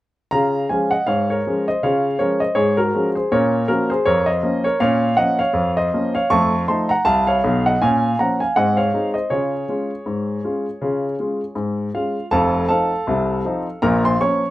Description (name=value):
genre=ragtime piano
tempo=80 BPM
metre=2/4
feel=swing 58% on 16ths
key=Db major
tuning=A4 = 440 Hz
part: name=clear grand piano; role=solo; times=0.3-14.5 s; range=F1 to Db6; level=-17 LUFS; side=equal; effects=none
room=moderate small room ambience, RT60 0.5 s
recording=rough home demo mix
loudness=-17 LUFS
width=side -16 dB against mid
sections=0.3-12.3 A section; 12.3-14.5 B section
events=none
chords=0.3 Db; 3.3 Bbm; 6.3 F7; 7.8 Bbm; 8.6 Ab; 9.3 Db; 12.3 F7; 13.8 Bbm